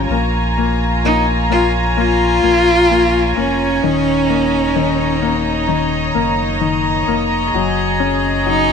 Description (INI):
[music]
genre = pop ballad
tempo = 65 BPM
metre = 4/4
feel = straight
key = Bb minor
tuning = A4 = 440 Hz
[part]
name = warm baby grand piano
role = accompaniment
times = 0.0-8.7 s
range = Eb3 to Db4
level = -20 LUFS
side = left 9 dB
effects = none
[part]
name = dark studio string section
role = sustained chords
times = 0.0-8.7 s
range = Eb4 to Bb5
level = -19 LUFS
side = equal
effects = none
[part]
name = sub bass with octave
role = bass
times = 0.0-8.7 s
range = Eb1 to Bb1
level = -21 LUFS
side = right 1 dB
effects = none
[part]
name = clear cello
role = melody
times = 1.1-8.7 s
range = Db4 to F4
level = -16 LUFS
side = right 1 dB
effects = tape echo
[sound]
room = moderate echo chamber reverb, RT60 1.8 s, studio reverb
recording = 1960s-style stereo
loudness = -13 LUFS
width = side -6 dB against mid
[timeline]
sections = 0.1-8.7 A section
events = none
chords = 0.1 Bbm7; 3.8 Ebm7; 7.5 Gbadd9